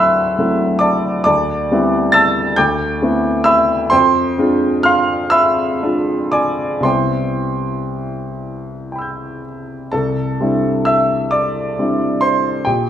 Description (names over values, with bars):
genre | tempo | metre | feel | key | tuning
classical, impressionist solo piano | 37-46 BPM (dotted quarters) | 6/8 | rubato | C major | A4 = 444 Hz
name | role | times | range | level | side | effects
warm grand piano | solo | 0.0-12.9 s | Bb1 to A6 | -14 LUFS | equal | none
room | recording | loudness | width
moderate recital hall reverb, RT60 1.3 s | minimal, uncompressed stereo recording | -14 LUFS | side -10 dB against mid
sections
0.0-9.9 A section; 9.9-12.9 B section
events
none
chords
0.0 D13; 1.3 Cmaj9/D; 3.9 Fm6; 6.8 Cmaj7; 9.9 C69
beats
| 1.27 2.58 | 3.93 5.34 | 6.85 8.42 | 9.92 11.31 | 12.65